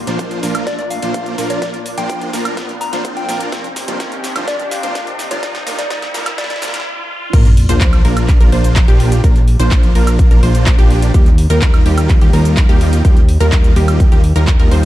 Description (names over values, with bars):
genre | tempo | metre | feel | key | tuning
EDM, festival progressive house | 126 BPM | 4/4 | straight | Bb major | A4 = 440 Hz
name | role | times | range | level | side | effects
lush unison pad | sustained chords | 0.0-6.8 s | C3 to G4 | -28 LUFS | equal | chorus, sidechain pumping
fat analog bass | bass | 0.0-14.9 s | Bb1 to Eb2 | -15 LUFS | equal | sidechain pumping
riser and sub drop | sound effects | 0.0-9.2 s | none | -24 LUFS | equal | none
big supersaw lead | riff | 0.1-14.9 s | F3 to C5 | -21 LUFS | right 1 dB | sidechain pumping, dub echo
big-room dance drum kit | drums | 0.1-14.8 s | crash cymbal, handclaps, hi-hat, shaker, snare drum, woodblock | -24 LUFS | right 1 dB | high-pass filter on hats, high-pass filter on perc, high-pass filter on snare, high-pass filter on cymbals, high-pass filter on room
electronic kick drum | drums | 0.2-14.6 s | none | -10 LUFS | equal | high-pass filter on kick, high-pass filter on room
soft struck synth lead | melody | 0.7-6.6 s | D5 to Bb5 | -24 LUFS | left 2 dB | chorus, cassette tape, dub echo
wide unison pluck | arpeggios | 7.3-14.9 s | G4 to C5 | -24 LUFS | equal | vintage 12-bit sampler grit, sidechain pumping, dub echo
room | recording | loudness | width
digital ambience | dark, warm production, high-pass filter | -11 LUFS | side -15 dB against mid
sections
0.0-7.3 A section; 7.3-14.9 B section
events
build-up 0.0-7.3; drum fill 0.0-6.9; riser 0.0-7.3; filter sweep on supersaw synth 0.0-7.3; filter sweep 0.0-7.3; stop 6.9-7.3; drop 7.3-14.9; impact 7.3-9.2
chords
0.0 Bb; 3.5 Cm; 7.3 Bb; 11.1 Ebadd9